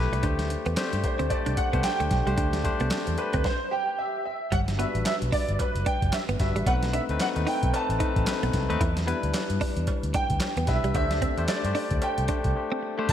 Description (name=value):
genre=R&B, new jack swing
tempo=112 BPM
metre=4/4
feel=swing 60% on 16ths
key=unclear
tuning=A4 = 440 Hz
part: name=barky tine electric piano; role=accompaniment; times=0.0-13.1 s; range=G3 to C5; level=-30 LUFS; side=left 4 dB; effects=none
part: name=vintage muted fingered electric bass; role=bass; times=0.0-13.1 s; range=F#1 to G2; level=-28 LUFS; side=equal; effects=none
part: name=direct-recorded clean electric guitar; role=riff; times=0.1-13.1 s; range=G3 to E4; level=-34 LUFS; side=right 3 dB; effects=analog chorus
part: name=boom bap sampler-style drum kit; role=drums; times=0.1-13.1 s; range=handclaps, hi-hat, kick drum, snare drum, tambourine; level=-29 LUFS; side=equal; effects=none
part: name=clear concert grand piano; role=melody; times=1.0-13.1 s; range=G4 to A5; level=-30 LUFS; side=right 2 dB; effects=ensemble chorus, digital delay
part: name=cowbell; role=percussion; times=4.5-12.2 s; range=none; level=-43 LUFS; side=right 6 dB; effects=none
room=moderate lush hall reverb, RT60 2.5 s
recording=bright 1980s-style digital production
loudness=-24 LUFS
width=side -10 dB against mid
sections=0.0-4.5 A section; 4.5-13.1 B section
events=stop 3.5-4.5; break 12.6-13.1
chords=0.2 D7sus4; 4.5 Gmaj7; 6.7 B7b9; 8.8 Em7; 10.9 D7sus4